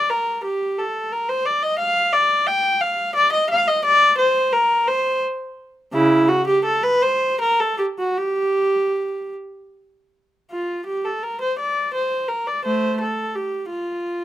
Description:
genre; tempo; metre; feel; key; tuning
classical, baroque-style suite movement for unaccompanied viola; 50-59 BPM (dotted quarters); 6/8; rubato; G minor; A4 = 440 Hz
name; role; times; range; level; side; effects
warm viola; solo; 0.0-14.2 s; C#3 to G5; -18 LUFS; equal; none
room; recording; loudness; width
little or no reverb; close, detailed microphones; -18 LUFS; side -12 dB against mid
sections
0.0-10.5 A section; 10.5-14.2 A section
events
none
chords
none

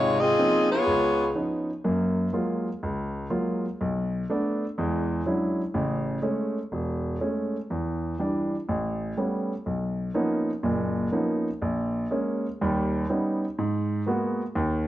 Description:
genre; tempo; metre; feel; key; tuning
jazz; 123 BPM; 4/4; swing 67% on 8ths; unclear; A4 = 440 Hz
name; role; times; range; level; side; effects
clear saxophone section; melody; 0.0-1.3 s; Ab3 to Eb5; -21 LUFS; left 1 dB; none
warm grand piano; accompaniment; 0.0-14.9 s; E1 to F#4; -25 LUFS; right 1 dB; none
room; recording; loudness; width
moderate large studio reverb, RT60 1.2 s; worn, warbling old tape, cassette tape, warbly pitch drift; -24 LUFS; side -14 dB against mid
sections
0.0-1.8 A section; 1.8-14.9 B section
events
none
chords
0.0 Dbmaj13; 0.9 Db9; 1.8 F#maj9; 3.8 Bm7; 4.8 E13; 5.8 Amaj7; 7.7 Em7; 8.7 A9; 9.7 Bmaj9#11; 11.6 A#m7; 12.6 D#aug7; 13.6 G#m9

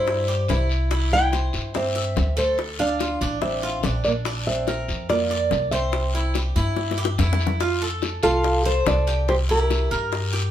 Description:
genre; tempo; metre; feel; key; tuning
latin, Cuban son and guajira; 143 BPM; 4/4; straight; F major; A4 = 440 Hz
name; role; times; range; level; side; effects
nylon-string guitar; melody; 0.0-10.5 s; A4 to G5; -24 LUFS; equal; none
nylon-string guitar; second line; 0.0-10.5 s; G3 to A4; -29 LUFS; right 3 dB; none
Cuban tres; arpeggios; 0.0-10.5 s; D4 to F5; -28 LUFS; right 2 dB; none
upright bass; bass; 0.0-10.5 s; A1 to G2; -24 LUFS; equal; none
bongos; percussion; 0.1-10.5 s; none; -28 LUFS; left 6 dB; none
guiro; percussion; 0.1-10.5 s; none; -33 LUFS; left 4 dB; none
room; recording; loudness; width
moderate studio reverb, RT60 0.6 s; band playing live in one room; -20 LUFS; side -11 dB against mid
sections
0.0-7.6 A section; 7.6-10.5 B section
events
drum fill 6.8-7.6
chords
0.0 C; 0.9 Cadd9; 2.6 Dm7; 4.3 Bbadd9; 5.9 C; 7.6 F; 9.3 C7

